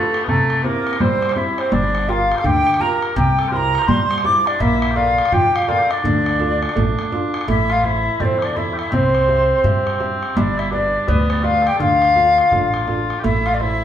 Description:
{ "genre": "celtic folk, Celtic hornpipe", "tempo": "167 BPM", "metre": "4/4", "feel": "swing 61% on 8ths", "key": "D minor, A minor from 7.5 s", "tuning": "A4 = 443 Hz", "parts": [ { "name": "wooden flute", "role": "melody", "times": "0.0-13.8 s", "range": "A4 to D6", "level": "-18 LUFS", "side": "left 1 dB", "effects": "none" }, { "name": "mellow small bagpipes", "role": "second line", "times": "0.0-13.8 s", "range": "A3 to D5", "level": "-24 LUFS", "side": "left 2 dB", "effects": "none" }, { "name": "clear upright piano", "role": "accompaniment", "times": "0.0-13.8 s", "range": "C3 to E5", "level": "-23 LUFS", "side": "right 1 dB", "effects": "none" }, { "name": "bodhran", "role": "percussion", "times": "0.1-13.7 s", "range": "none", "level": "-25 LUFS", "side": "equal", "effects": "none" }, { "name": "upright bass", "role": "bass", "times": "1.7-13.8 s", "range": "G1 to G2", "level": "-23 LUFS", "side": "equal", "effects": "none" } ], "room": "wet stone room reverb, RT60 1.2 s", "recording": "band playing live in one room", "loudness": "-15 LUFS", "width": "side -10 dB against mid", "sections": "0.0-7.5 A section; 7.5-13.8 B section", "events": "none", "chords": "0.3 C; 1.7 Gm7; 3.2 C; 4.6 Bbmaj7; 6.0 Dm; 7.5 Am; 8.9 C; 10.4 G; 11.8 Dm; 13.2 Am", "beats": "| 0.28 0.64 1.00 1.36 | 1.72 2.08 2.44 2.80 | 3.16 3.52 3.88 4.24 | 4.60 4.96 5.32 5.68 | 6.04 6.40 6.76 7.12 | 7.48 7.84 8.20 8.56 | 8.92 9.28 9.64 10.00 | 10.36 10.72 11.08 11.44 | 11.80 12.16 12.52 12.88 | 13.25 13.61" }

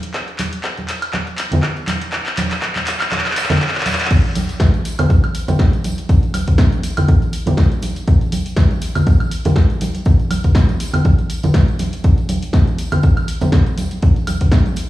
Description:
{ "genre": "house", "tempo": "121 BPM", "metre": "4/4", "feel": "swing 55% on 16ths", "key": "none", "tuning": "none", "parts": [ { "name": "punchy analog drum machine", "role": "drums", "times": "0.0-14.9 s", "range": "crash cymbal, handclaps, hi-hat, snare drum, woodblock", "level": "-22 LUFS", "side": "equal", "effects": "sidechain pumping on hats, sidechain pumping on perc, sidechain pumping on cymbals" }, { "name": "tambourine and congas", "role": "percussion", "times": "0.0-14.9 s", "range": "none", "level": "-21 LUFS", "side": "right 1 dB", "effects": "sidechain pumping on perc, low-pass filter on perc" }, { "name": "electronic kick drum", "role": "drums", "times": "0.1-14.6 s", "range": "none", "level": "-14 LUFS", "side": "equal", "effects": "high-pass filter on kick, high-pass filter on room" } ], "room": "light reverb", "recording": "played on a big sound system in a bare room, large studio reverb, small room ambience", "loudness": "-14 LUFS", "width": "side -15 dB against mid", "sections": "0.0-4.1 A section; 4.1-14.9 B section", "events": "build-up 0.0-4.1; drum fill 0.0-4.1; drop 4.1-14.9", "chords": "none", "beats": "| 0.14 0.64 1.13 1.63 | 2.12 2.62 3.12 3.61 | 4.11 4.60 5.10 5.60 | 6.09 6.59 7.08 7.58 | 8.08 8.57 9.07 9.56 | 10.06 10.55 11.05 11.55 | 12.04 12.54 13.03 13.53 | 14.03 14.52" }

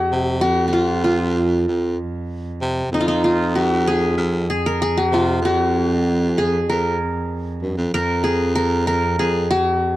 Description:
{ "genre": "arabic", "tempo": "96 BPM", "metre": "4/4", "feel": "straight", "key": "F maqam bayati", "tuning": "A4 = 438 Hz", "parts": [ { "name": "qanun", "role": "melody", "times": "0.0-10.0 s", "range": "Eb4 to Bb4", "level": "-19 LUFS", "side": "equal", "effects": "none" }, { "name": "warm cello", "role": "drone", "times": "0.0-10.0 s", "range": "F2", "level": "-26 LUFS", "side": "right 1 dB", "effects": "none" }, { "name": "breathy baritone saxophone", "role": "bass", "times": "0.1-9.5 s", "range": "F2 to C3", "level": "-21 LUFS", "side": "equal", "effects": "none" } ], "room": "light reverb", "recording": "dry, close 1970s-style studio recording", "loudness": "-17 LUFS", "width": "side -15 dB against mid", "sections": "0.0-10.0 A section", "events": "none", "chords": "none", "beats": "| 0.43 1.06 1.68 2.31 | 2.93 3.56 4.18 4.80 | 5.43 6.05 6.68 7.30 | 7.93 8.55 9.18 9.81" }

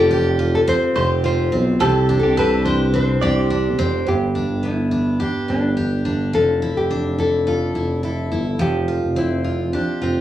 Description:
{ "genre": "acoustic pop", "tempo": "106 BPM", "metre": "4/4", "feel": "straight", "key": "unclear", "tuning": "A4 = 438 Hz", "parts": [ { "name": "nylon-string guitar", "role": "melody", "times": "0.0-10.2 s", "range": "C4 to C5", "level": "-21 LUFS", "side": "left 1 dB", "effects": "none" }, { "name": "picked steel-string acoustic guitar", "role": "accompaniment", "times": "0.0-10.2 s", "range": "G2 to A4", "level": "-21 LUFS", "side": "equal", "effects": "none" }, { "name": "direct-recorded clean electric guitar", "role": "arpeggios", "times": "0.0-3.6 s", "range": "G4 to D5", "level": "-23 LUFS", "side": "right 3 dB", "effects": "ensemble chorus" }, { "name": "mellow tuba", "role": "bass", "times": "0.0-10.2 s", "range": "F1 to C2", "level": "-21 LUFS", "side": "equal", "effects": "none" } ], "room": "moderate studio reverb, RT60 0.6 s", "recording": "heard from further back in the room, studio reverb", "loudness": "-17 LUFS", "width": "side -12 dB against mid", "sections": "0.0-4.1 A section; 4.1-10.2 B section", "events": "none", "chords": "0.0 Fadd9; 1.8 Csus2; 4.1 G; 6.3 Dmadd9/F; 8.6 Fsus2", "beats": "0.11 0.68 1.24 | 1.81 2.37 2.94 3.50 | 4.07 4.63 5.20 5.77 | 6.33 6.90 7.47 8.03 | 8.60 9.17 9.73" }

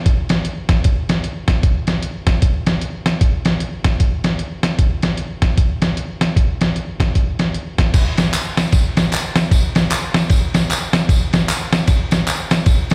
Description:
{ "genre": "gospel", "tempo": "152 BPM", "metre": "4/4", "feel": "swing 61% on 8ths", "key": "none", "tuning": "none", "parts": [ { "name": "lo-fi sampler-style drum kit", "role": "drums", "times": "0.1-12.9 s", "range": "crash cymbal, hi-hat, kick drum, ride cymbal, snare drum", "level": "-18 LUFS", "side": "equal", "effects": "none" }, { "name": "tambourine and handclaps", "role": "percussion", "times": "7.9-12.9 s", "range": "none", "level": "-26 LUFS", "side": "equal", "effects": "slapback echo" } ], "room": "moderate club reverb, RT60 0.8 s", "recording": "live gig heard through the venue's PA, recital hall reverb", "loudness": "-17 LUFS", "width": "mono", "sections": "0.0-7.9 A section; 7.9-12.9 B section", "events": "none", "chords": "none", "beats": "| 0.06 0.45 0.85 1.24 | 1.63 2.03 2.42 2.82 | 3.21 3.60 4.00 4.39 | 4.79 5.18 5.58 5.97 | 6.36 6.76 7.15 7.54 | 7.94 8.33 8.73 9.12 | 9.51 9.91 10.30 10.69 | 11.09 11.48 11.87 12.27 | 12.66" }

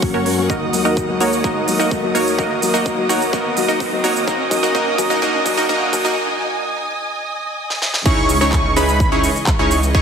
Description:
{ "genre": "EDM, festival progressive house", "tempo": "127 BPM", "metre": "4/4", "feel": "straight", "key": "unclear", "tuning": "A4 = 440 Hz", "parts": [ { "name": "dark baby grand piano", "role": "accompaniment", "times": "0.0-6.2 s", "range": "F#3 to F#4", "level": "-23 LUFS", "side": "left 4 dB", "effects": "sidechain pumping, ping-pong delay" }, { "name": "warm studio string section", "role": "sustained chords", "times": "0.0-10.0 s", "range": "C#3 to D#6", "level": "-25 LUFS", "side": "right 2 dB", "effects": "sidechain pumping" }, { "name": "big-room dance drum kit", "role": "drums", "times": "0.0-10.0 s", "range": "crash cymbal, handclaps, hi-hat, rim click, shaker, snare drum", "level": "-24 LUFS", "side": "right 2 dB", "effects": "high-pass filter on hats, high-pass filter on perc, high-pass filter on snare, high-pass filter on cymbals" }, { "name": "electronic kick drum", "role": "drums", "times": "0.0-10.0 s", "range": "none", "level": "-20 LUFS", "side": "equal", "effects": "none" }, { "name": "riser", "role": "sound effects", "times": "0.1-6.2 s", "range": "none", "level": "-28 LUFS", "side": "right 1 dB", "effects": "none" }, { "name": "supersaw stab", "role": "riff", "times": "0.1-10.0 s", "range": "A#3 to D#5", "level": "-18 LUFS", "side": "right 1 dB", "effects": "sidechain pumping, low-pass filter, ping-pong delay" }, { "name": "wide detuned saw bass", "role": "bass", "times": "0.1-10.0 s", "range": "C#2 to F#2", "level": "-26 LUFS", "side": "equal", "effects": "chorus, sidechain pumping" }, { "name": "wide unison lead", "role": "arpeggios", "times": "8.1-10.0 s", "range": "B5 to C#6", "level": "-20 LUFS", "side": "right 1 dB", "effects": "sidechain pumping, ping-pong delay" } ], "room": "moderate lush hall reverb, RT60 2.2 s", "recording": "heavily compressed radio sound, multiband compression, high-pass filter", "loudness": "-15 LUFS", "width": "side -6 dB against mid", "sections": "0.0-8.1 A section; 8.1-10.0 B section", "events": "build-up 0.0-8.1; filter sweep on supersaw synth 0.0-8.1; filter sweep 0.0-8.1; riser 0.1-6.2; drum fill 0.5-6.2, 7.7-8.1; break 6.2-8.1; drop 8.1-10.0", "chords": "0.5 D#m; 4.3 G#5/D#; 8.1 C#madd9", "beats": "0.02 | 0.50 0.97 1.44 1.91 | 2.39 2.86 3.33 3.80 | 4.28 4.75 5.22 5.69 | 6.17 6.64 7.11 7.58 | 8.06 8.53 9.00 9.47 | 9.95" }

